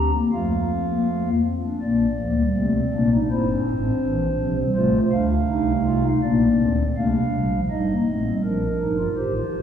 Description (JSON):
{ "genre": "classical, baroque-style 4-part fugue for pipe organ", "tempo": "82 BPM", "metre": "4/4", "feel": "straight", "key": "Bb major", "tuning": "A4 = 440 Hz", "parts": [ { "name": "pipe organ, stopped flute", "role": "solo", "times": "0.0-9.6 s", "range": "G1 to Bb5", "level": "-19 LUFS", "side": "equal", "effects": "none" } ], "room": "wet concert hall reverb, RT60 1.9 s", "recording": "heard from further back in the room, small room reverb", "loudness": "-19 LUFS", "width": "side -8 dB against mid", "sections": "0.0-1.8 A section; 1.8-7.7 B section; 7.7-9.6 A section", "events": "none", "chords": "0.3 F; 1.8 Bb; 3.3 C7/G; 4.8 F/A; 6.2 Bb; 7.7 Ebmaj7/G" }